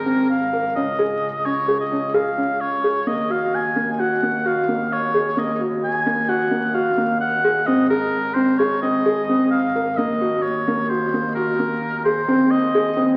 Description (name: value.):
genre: contemporary instrumental, chamber music in an uneven meter.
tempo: 130 BPM.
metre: 5/4.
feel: straight.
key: Eb dorian.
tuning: A4 = 441 Hz.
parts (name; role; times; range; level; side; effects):
clear oboe; melody; 0.0-13.2 s; Bb4 to Ab5; -24 LUFS; equal; none.
warm double bass; bass; 0.0-13.2 s; Ab1 to Eb2; -35 LUFS; equal; none.
felt-muted upright piano; arpeggios; 0.1-13.1 s; Bb3 to Bb4; -23 LUFS; equal; none.
room: wet concert hall reverb, RT60 2.1 s.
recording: very old 78 rpm record, vinyl crackle.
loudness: -20 LUFS.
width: mono.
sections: 0.0-12.3 A section.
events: none.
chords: 0.0 Abadd9; 0.8 Db; 3.1 Ebmadd9; 7.7 Ab; 10.0 Ebm7; 12.3 Ab/Eb.